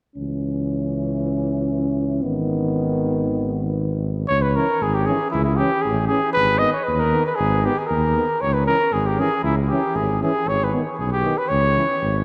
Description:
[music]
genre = balkan folk, Balkan brass band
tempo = 117 BPM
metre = 2/4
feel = swing 55% on 16ths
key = C# dorian sharp4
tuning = A4 = 440 Hz
[part]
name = mellow trombone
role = accompaniment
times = 0.2-11.9 s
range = D#3 to E3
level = -31 LUFS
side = equal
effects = none
[part]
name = warm euphonium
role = accompaniment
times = 0.2-11.8 s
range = B3 to C#4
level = -29 LUFS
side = equal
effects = none
[part]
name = mellow tuba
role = bass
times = 0.2-12.2 s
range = G#1 to D#2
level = -25 LUFS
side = equal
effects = none
[part]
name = mellow cornet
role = melody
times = 4.3-12.2 s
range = E4 to D#5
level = -22 LUFS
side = equal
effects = none
[sound]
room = wet cathedral reverb, RT60 5.5 s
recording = in a vast, echoing space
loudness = -21 LUFS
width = mono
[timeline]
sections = 0.2-4.3 A section; 4.3-12.2 B section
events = none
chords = 0.2 C#m; 2.2 G#m; 4.3 C#m; 6.4 G#m; 8.4 C#m; 10.5 G#m; 11.5 C#m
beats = | 0.17 0.69 | 1.20 1.72 | 2.24 2.76 | 3.27 3.79 | 4.30 4.82 | 5.33 5.85 | 6.36 6.87 | 7.38 7.90 | 8.41 8.92 | 9.44 9.95 | 10.46 10.97 | 11.48 12.00

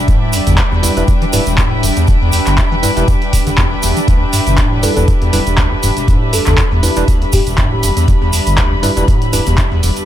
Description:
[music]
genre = acid house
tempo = 120 BPM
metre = 4/4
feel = swing 55% on 16ths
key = E minor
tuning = A4 = 438 Hz
[part]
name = string machine, full ensemble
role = sustained chords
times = 0.0-10.1 s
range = G3 to D5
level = -22 LUFS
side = equal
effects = ensemble chorus, sidechain pumping
[part]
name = acid bass, square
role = riff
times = 0.0-9.9 s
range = E1 to E3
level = -17 LUFS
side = equal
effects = tube saturation, analog chorus, digital delay
[part]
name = warm studio string section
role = texture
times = 0.0-10.1 s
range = D4 to B5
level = -20 LUFS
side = left 2 dB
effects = sidechain pumping
[part]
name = saturated sub bass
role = bass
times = 0.1-9.9 s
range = D1 to G1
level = -18 LUFS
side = equal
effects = tube saturation, sidechain pumping
[part]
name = electronic kick drum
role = drums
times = 0.1-9.7 s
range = none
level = -14 LUFS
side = equal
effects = none
[part]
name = punchy analog drum machine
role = drums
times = 0.1-10.1 s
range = handclaps, hi-hat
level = -20 LUFS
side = equal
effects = none
[part]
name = egg shaker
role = percussion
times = 0.1-10.1 s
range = none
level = -25 LUFS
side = right 5 dB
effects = none
[part]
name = overdriven tine electric piano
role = stabs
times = 0.8-9.4 s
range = G3 to B4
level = -20 LUFS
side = right 2 dB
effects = medium tremolo, digital delay
[part]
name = thumb-piano-like synth pluck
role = melody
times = 4.8-8.0 s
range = G4 to A4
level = -23 LUFS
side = equal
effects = ensemble chorus, cassette tape, dub echo
[sound]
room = digital ambience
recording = none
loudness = -10 LUFS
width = side -12 dB against mid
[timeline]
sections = 0.0-10.1 A section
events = none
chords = 0.0 Em7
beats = | 0.08 0.58 1.08 1.58 | 2.08 2.58 3.08 3.58 | 4.08 4.58 5.08 5.58 | 6.08 6.58 7.08 7.58 | 8.08 8.58 9.08 9.58

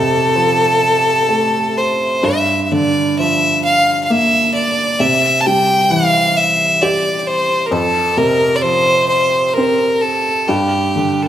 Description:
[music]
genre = celtic folk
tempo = 65 BPM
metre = 3/4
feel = rubato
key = unclear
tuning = A4 = 440 Hz
[part]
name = bright fiddle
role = melody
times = 0.0-11.3 s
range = G4 to A5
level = -13 LUFS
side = equal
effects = none
[part]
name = felt-muted upright piano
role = accompaniment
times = 0.0-11.3 s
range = F2 to G4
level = -18 LUFS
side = right 1 dB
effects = none
[sound]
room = moderate recital hall reverb, RT60 1.7 s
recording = recorded in a church or concert hall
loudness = -12 LUFS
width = side -11 dB against mid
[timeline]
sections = 0.0-11.3 A section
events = none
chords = 0.0 F; 2.2 Gm7; 5.0 C; 7.7 F5; 10.5 G5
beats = 0.34 1.28 | 2.24 3.18 4.10 | 5.00 5.91 6.82 | 7.72 8.63 9.55 | 10.48

